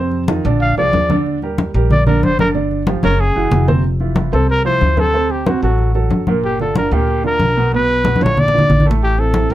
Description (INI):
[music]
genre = Afro-Cuban jazz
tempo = 186 BPM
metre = 4/4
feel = straight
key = F major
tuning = A4 = 440 Hz
[part]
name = warm upright piano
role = accompaniment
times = 0.0-9.5 s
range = A2 to D5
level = -19 LUFS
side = right 3 dB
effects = none
[part]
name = upright bass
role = bass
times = 0.0-9.5 s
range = F1 to F2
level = -18 LUFS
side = equal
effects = none
[part]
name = congas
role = percussion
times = 0.1-9.5 s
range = none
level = -18 LUFS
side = left 1 dB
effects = none
[part]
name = breathy trumpet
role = melody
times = 0.6-9.5 s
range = F#4 to F5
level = -17 LUFS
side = equal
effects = none
[sound]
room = light reverb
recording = none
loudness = -13 LUFS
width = side -14 dB against mid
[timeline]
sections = 0.0-3.8 A section; 3.8-9.5 B section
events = trumpet solo 0.0-3.8; drum fill 3.0-3.8, 8.1-9.0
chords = 0.0 F5; 0.6 Bb9; 1.3 Ebmaj7; 2.6 G5; 3.2 Gbsus2; 3.8 F5; 5.1 D7; 6.4 Gm7; 7.7 Bdim; 8.4 Bb; 9.0 Am7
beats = 0.29 0.61 0.94 | 1.26 1.58 1.91 2.23 | 2.55 2.88 3.20 3.52 | 3.85 4.17 4.49 4.82 | 5.14 5.46 5.79 6.11 | 6.43 6.76 7.08 7.40 | 7.73 8.05 8.37 8.70 | 9.02 9.34